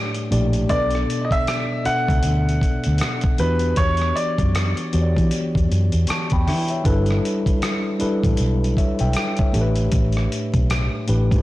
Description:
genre	R&B, neo-soul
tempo	78 BPM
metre	4/4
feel	swing 60% on 16ths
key	E dorian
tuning	A4 = 440 Hz
part	mellow tine electric piano	accompaniment	0.0-11.4 s	A2 to C#6	-23 LUFS	left 1 dB	medium stereo tremolo
part	dusty soul sampler-style drum kit	drums	0.1-11.4 s	hi-hat, kick drum, rim click	-23 LUFS	equal	none
part	vintage muted fingered electric bass	bass	0.3-11.4 s	G1 to E3	-20 LUFS	equal	transformer saturation
part	clear baby grand piano	melody	0.7-5.3 s	B4 to F#5	-24 LUFS	right 1 dB	tape echo
room	light reverb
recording	blown-out, overdriven recording, vinyl crackle, overdrive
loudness	-18 LUFS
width	side -16 dB against mid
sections	0.0-11.4 A section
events	none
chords	0.0 A7sus4; 0.7 Bm7; 3.4 Em9; 6.8 G69; 9.5 A7sus4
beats	| 0.69 1.46 2.23 3.00 | 3.77 4.54 5.31 6.08 | 6.85 7.62 8.39 9.15 | 9.92 10.69

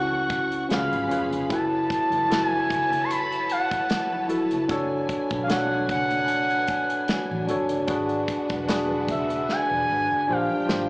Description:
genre	lush 1970s-style soul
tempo	75 BPM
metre	4/4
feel	swing 54% on 16ths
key	unclear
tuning	A4 = 440 Hz
part	expressive portamento lead	melody	0.0-10.9 s	E5 to C#6	-24 LUFS	equal	chorus, slapback echo
part	dark studio violin section	second line	0.0-10.9 s	D4 to C#6	-34 LUFS	equal	slapback echo, tape echo
part	tine electric piano	accompaniment	0.0-10.9 s	C#4 to C#5	-26 LUFS	equal	overdrive, slapback echo
part	warm studio string section	sustained chords	0.0-10.9 s	C#3 to E#5	-38 LUFS	equal	none
part	vintage muted fingered electric bass	bass	0.0-10.9 s	E1 to C#2	-36 LUFS	equal	none
part	vibraphone with soft mallets	texture	0.0-8.2 s	E4 to F#4	-38 LUFS	equal	none
part	congas	percussion	0.1-10.9 s	none	-39 LUFS	right 1 dB	none
part	damped 70s drum kit	drums	0.3-10.9 s	hi-hat, kick drum, snare drum	-29 LUFS	equal	none
room	light reverb, small room reverb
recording	live gig heard through the venue's PA, club reverb, small speaker sound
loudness	-22 LUFS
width	side -24 dB against mid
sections	0.0-10.9 A section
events	drum fill 9.5-10.9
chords	0.0 A6; 0.7 C#7; 1.5 F#m7; 4.7 Bm7/F#; 7.9 E9; 10.3 Bb6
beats	0.70 | 1.50 2.30 3.09 3.89 | 4.69 5.49 6.29 7.08 | 7.88 8.68 9.48 10.28

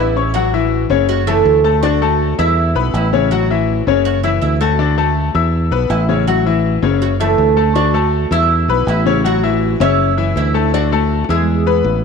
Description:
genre	latin, salsa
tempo	162 BPM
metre	4/4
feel	straight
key	A major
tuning	A4 = 440 Hz
part	oud	melody	0.0-11.8 s	G#3 to F#5	-18 LUFS	right 10 dB	none
part	clear grand piano	accompaniment	0.0-12.0 s	C#3 to E6	-16 LUFS	left 12 dB	none
part	fingered electric bass	bass	0.0-12.0 s	F#1 to E2	-17 LUFS	right 1 dB	none
room	light reverb, small room ambience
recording	1960s-style stereo with parts hard left and right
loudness	-12 LUFS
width	side -5 dB against mid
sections	0.3-12.0 A section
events	none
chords	0.3 A6; 1.1 F#m7; 1.8 D; 2.6 E5; 3.3 A6; 4.1 F#m7; 4.8 D; 5.5 E5; 6.3 A6; 7.0 F#m7; 7.8 D; 8.5 E5; 9.2 A6; 10.0 F#m7; 10.7 D; 11.5 E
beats	| 0.34 0.72 1.09 1.46 | 1.83 2.20 2.57 2.94 | 3.31 3.68 4.05 4.42 | 4.79 5.16 5.53 5.90 | 6.27 6.64 7.02 7.39 | 7.76 8.13 8.50 8.87 | 9.25 9.62 9.99 10.36 | 10.73 11.11 11.48 11.85

